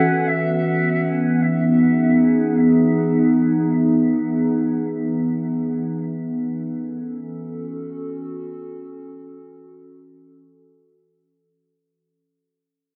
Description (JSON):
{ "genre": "ambient", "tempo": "free time", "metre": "none", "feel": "none", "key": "F# dorian", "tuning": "A4 = 440 Hz", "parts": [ { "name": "warbly tape-like pad", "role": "sustained chords", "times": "0.0-12.0 s", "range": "E3 to A4", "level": "-21 LUFS", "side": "equal", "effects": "chorus, built-in reverb" } ], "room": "wet spring reverb, RT60 1.7 s, small room reverb", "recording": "none", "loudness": "-20 LUFS", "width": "mono", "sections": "0.0-12.0 A section", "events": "fade-out 0.0-12.0", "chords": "0.0 Emaj7; 6.0 F#m7" }